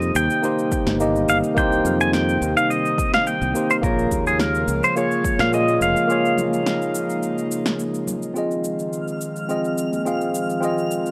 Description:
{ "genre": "sunset chillout", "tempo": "106 BPM", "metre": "4/4", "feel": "straight", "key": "F minor", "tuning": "A4 = 440 Hz", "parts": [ { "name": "pedal steel guitar", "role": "melody", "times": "0.0-7.8 s", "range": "Ab4 to Ab5", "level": "-24 LUFS", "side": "equal", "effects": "analog delay" }, { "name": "tine electric piano", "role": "accompaniment", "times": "0.0-11.1 s", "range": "Bb3 to F5", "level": "-25 LUFS", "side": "equal", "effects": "tape echo" }, { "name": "airy breathy pad", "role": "sustained chords", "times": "0.0-11.1 s", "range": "C3 to F4", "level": "-31 LUFS", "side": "equal", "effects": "chorus" }, { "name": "modern bright fingered electric bass", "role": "bass", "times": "0.0-5.9 s", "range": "F1 to Bb2", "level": "-27 LUFS", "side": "equal", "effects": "none" }, { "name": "electronic cabasa and snare drum", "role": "drums", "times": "0.0-11.1 s", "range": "none", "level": "-32 LUFS", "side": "equal", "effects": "overdrive, small room ambience" }, { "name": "electronic kick drum", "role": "drums", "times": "0.7-5.4 s", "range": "none", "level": "-28 LUFS", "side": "equal", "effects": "overdrive, small room ambience" }, { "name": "congas", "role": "percussion", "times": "0.9-10.0 s", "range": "none", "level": "-36 LUFS", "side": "equal", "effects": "none" }, { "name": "twinkling granular texture", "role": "texture", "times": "9.0-11.1 s", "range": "F6", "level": "-38 LUFS", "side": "equal", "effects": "built-in reverb" } ], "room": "digital ambience", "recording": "dry, gritty hardware recording", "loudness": "-21 LUFS", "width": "mono", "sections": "0.0-8.4 A section; 8.4-11.1 B section", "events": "break 6.1-8.4", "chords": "0.0 Cm7; 3.8 Bbm7; 8.4 Fm7", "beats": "0.44 1.00 | 1.57 2.13 2.70 3.27 | 3.83 4.40 4.96 5.53 | 6.10 6.66 7.23 7.79 | 8.36 8.93 9.49 10.06 | 10.62" }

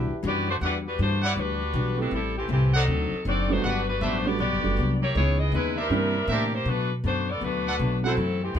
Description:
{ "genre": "jazz, big band swing", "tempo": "159 BPM", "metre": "4/4", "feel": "swing 63% on 8ths", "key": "E minor", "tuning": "A4 = 441 Hz", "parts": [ { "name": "archtop guitar, miked and amplified", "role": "accompaniment", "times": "0.0-8.6 s", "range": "F#2 to F#4", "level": "-31 LUFS", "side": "left 6 dB", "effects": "none" }, { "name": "mellow trombone section", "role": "sustained chords", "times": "0.0-0.6 s", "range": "E3 to G4", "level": "-40 LUFS", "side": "equal", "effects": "none" }, { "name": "upright bass", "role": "bass", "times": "0.0-8.6 s", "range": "F#1 to B2", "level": "-27 LUFS", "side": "equal", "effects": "none" }, { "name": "bright saxophone section", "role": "melody", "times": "0.3-8.6 s", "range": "E3 to D#5", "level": "-28 LUFS", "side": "left 2 dB", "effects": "none" }, { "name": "clear trumpet section", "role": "stabs", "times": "0.6-8.1 s", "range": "D4 to F#5", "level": "-29 LUFS", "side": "right 2 dB", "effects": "none" }, { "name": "warm grand piano", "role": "accompaniment", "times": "2.0-8.2 s", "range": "F#3 to G4", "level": "-30 LUFS", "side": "right 5 dB", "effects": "none" } ], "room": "moderate club reverb, RT60 0.6 s", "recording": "none", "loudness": "-23 LUFS", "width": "side -9 dB against mid", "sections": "0.6-8.6 A section", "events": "none", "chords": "0.0 Em9; 2.1 Am7; 2.9 D7b9; 3.6 Gmaj7; 5.1 C#m9; 5.9 C9; 6.7 Bm7", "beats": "0.23 | 0.61 0.98 1.36 1.74 | 2.12 2.50 2.88 3.26 | 3.63 4.01 4.39 4.77 | 5.15 5.53 5.90 6.28 | 6.66 7.04 7.42 7.79 | 8.17 8.55" }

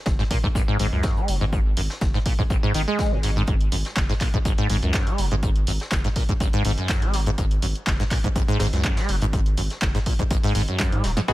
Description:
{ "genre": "acid house", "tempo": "123 BPM", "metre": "4/4", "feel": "straight", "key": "unclear", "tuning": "A4 = 440 Hz", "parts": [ { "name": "saturated sub bass", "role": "bass", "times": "0.1-11.3 s", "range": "D#1 to G#2", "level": "-25 LUFS", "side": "equal", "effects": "tube saturation, sidechain pumping" }, { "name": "electronic kick drum", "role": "drums", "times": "0.1-11.3 s", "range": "none", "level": "-23 LUFS", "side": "equal", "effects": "none" }, { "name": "vintage brush drum kit", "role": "drums", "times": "0.1-11.3 s", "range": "hi-hat, snare drum", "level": "-36 LUFS", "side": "left 1 dB", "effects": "sidechain pumping on hats, high-pass filter on hats, high-pass filter on snare, high-pass filter on room" }, { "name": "liquid acid bass", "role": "riff", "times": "0.2-11.3 s", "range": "G#1 to G#3", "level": "-25 LUFS", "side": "equal", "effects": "wide subtle chorus, sidechain pumping" }, { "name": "punchy analog drum machine", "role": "drums", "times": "0.3-11.3 s", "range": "handclaps, hi-hat, snare drum", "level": "-30 LUFS", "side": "right 1 dB", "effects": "none" }, { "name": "band-passed chord stab", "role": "stabs", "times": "11.3 s", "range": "B3 to G#4", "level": "-20 LUFS", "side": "equal", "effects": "phaser, wide subtle chorus" } ], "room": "little or no reverb", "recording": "none", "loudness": "-20 LUFS", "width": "side -16 dB against mid", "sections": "0.0-11.3 A section", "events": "drum fill 10.8-11.3", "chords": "0.0 G#7(no3)", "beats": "0.06 0.55 1.04 | 1.53 2.02 2.50 2.99 | 3.48 3.97 4.45 4.94 | 5.43 5.92 6.41 6.89 | 7.38 7.87 8.36 8.84 | 9.33 9.82 10.31 10.79 | 11.28" }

